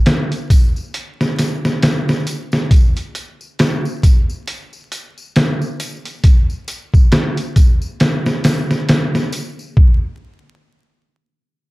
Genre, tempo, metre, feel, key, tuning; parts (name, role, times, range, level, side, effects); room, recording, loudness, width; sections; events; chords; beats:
trip hop; 68 BPM; 4/4; swing 58% on 16ths
trip hop sampler-style drum kit; drums; 0.1-10.0 s; hi-hat, kick drum, snare drum; -13 LUFS; equal
tambourine; percussion; 0.1-9.7 s; -35 LUFS; left 3 dB
light reverb, digital ambience; dark, warm production, vinyl crackle; -13 LUFS; side -20 dB against mid
0.0-9.8 A section; 9.8-11.7 B section
0.06 0.94 1.83 | 2.71 3.59 4.47 5.36 | 6.24 7.12 8.00 8.89 | 9.77